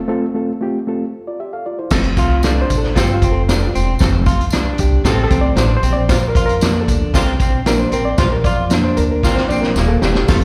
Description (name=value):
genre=uptempo 1960s-style soul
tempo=115 BPM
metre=4/4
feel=straight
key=F major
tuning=A4 = 441 Hz
part: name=reed electric piano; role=accompaniment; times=0.1-10.4 s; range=F3 to F5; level=-22 LUFS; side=equal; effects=overdrive, plate reverb
part: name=edgy saxophone section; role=second line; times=1.9-10.4 s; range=A3 to A4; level=-28 LUFS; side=equal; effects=plate reverb, slapback echo
part: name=upright bass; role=bass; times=1.9-10.4 s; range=Eb1 to F2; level=-20 LUFS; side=equal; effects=none
part: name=vintage drum kit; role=drums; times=1.9-10.4 s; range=crash cymbal, hi-hat, kick drum, snare drum, splash cymbal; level=-20 LUFS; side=equal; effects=none
part: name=tambourine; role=percussion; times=1.9-10.4 s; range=none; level=-35 LUFS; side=equal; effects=none
part: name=electric guitar through a small old amp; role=riff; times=2.2-10.2 s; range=Bb3 to F4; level=-25 LUFS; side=equal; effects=spring reverb
room=moderate club reverb, RT60 0.8 s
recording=live gig heard through the venue's PA, recital hall reverb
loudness=-16 LUFS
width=mono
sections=0.0-1.9 A section; 1.9-10.4 B section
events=break 0.0-1.9; reed electric piano solo 1.9-10.4; drum fill 9.2-10.3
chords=0.0 F; 5.8 Bb